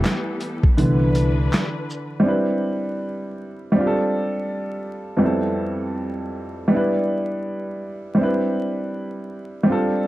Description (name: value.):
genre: lo-fi hip hop.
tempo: 81 BPM.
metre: 4/4.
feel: swing 66% on 16ths.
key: C major.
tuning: A4 = 440 Hz.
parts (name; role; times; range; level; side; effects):
warm upright piano; accompaniment; 0.0-10.1 s; F2 to B4; -21 LUFS; equal; none.
muted studio string section; sustained chords; 0.0-2.2 s; E3 to B4; -30 LUFS; left 3 dB; none.
boom bap sampler-style drum kit; drums; 0.0-2.1 s; handclaps, hi-hat, kick drum, shaker, snare drum; -19 LUFS; equal; none.
upright bass; bass; 0.8-1.5 s; C2; -20 LUFS; equal; none.
room: moderate small room reverb, RT60 0.6 s.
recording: dark, warm production, vinyl crackle.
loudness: -20 LUFS.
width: side -16 dB against mid.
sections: 0.0-2.3 A section; 2.3-10.1 B section.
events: upright piano solo 0.0-2.3.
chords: 0.0 Fmaj9#11 (rootless); 0.8 Cmaj9; 3.7 G9sus4; 5.2 Fmaj9#11; 6.7 Em7; 8.2 Cmaj9.